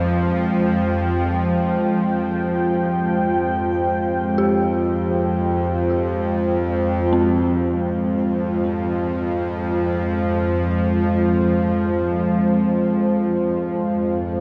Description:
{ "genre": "dark ambient drone", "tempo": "free time", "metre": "none", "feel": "none", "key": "F minor", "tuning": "A4 = 439 Hz", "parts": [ { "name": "deep dark ambient pad", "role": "sustained chords", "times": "0.0-14.4 s", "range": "Ab3 to G5", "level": "-23 LUFS", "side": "equal", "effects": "chorus, built-in reverb, shimmer reverb" }, { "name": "dark detuned synth bell", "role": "arpeggios", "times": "0.0-14.4 s", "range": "C4 to G4", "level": "-32 LUFS", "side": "equal", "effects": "chorus, diffuse ambient delay, shimmer reverb" }, { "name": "bowed-like drone", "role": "drone", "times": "0.0-14.4 s", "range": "F2 to F3", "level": "-24 LUFS", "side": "equal", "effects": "built-in reverb" } ], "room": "wet cathedral reverb, RT60 5.6 s", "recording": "none", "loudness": "-20 LUFS", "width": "mono", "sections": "0.0-7.1 A section; 7.1-14.4 B section", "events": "none", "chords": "0.0 Fm", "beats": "free time" }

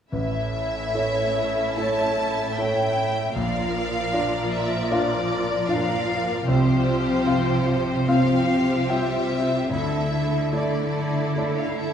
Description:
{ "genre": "cinematic, emotional film score for orchestra", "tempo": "75 BPM", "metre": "4/4", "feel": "uneven beats, rubato", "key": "unclear", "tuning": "A4 = 440 Hz", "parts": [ { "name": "rich studio violin section", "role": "melody", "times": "0.1-11.9 s", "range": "C5 to A5", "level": "-28 LUFS", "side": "left 1 dB", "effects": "none" }, { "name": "warm symphonic violin section", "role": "second line", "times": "0.1-11.9 s", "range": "E4 to E5", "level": "-29 LUFS", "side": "left 1 dB", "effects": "none" }, { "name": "clear concert grand piano", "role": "accompaniment", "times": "0.1-11.9 s", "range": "A1 to G5", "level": "-25 LUFS", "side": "left 2 dB", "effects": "none" }, { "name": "warm symphonic viola section", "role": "accompaniment", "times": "0.1-11.9 s", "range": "F3 to F4", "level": "-30 LUFS", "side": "right 1 dB", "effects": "none" }, { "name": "rich symphonic cello section", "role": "bass", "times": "0.1-11.9 s", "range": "A2 to D3", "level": "-27 LUFS", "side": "right 2 dB", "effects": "none" } ], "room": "wet recital hall reverb, RT60 1.6 s", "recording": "studio ambience", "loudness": "-20 LUFS", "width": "side -8 dB against mid", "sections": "0.1-11.9 A section", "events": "none", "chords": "0.1 A; 3.4 Bb; 6.5 Csus4; 9.7 Dsus2", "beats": "| 0.12 0.94 1.77 2.57 | 3.36 4.13 4.91 5.69 | 6.48 7.26 8.08 8.89 | 9.70 10.53 11.36" }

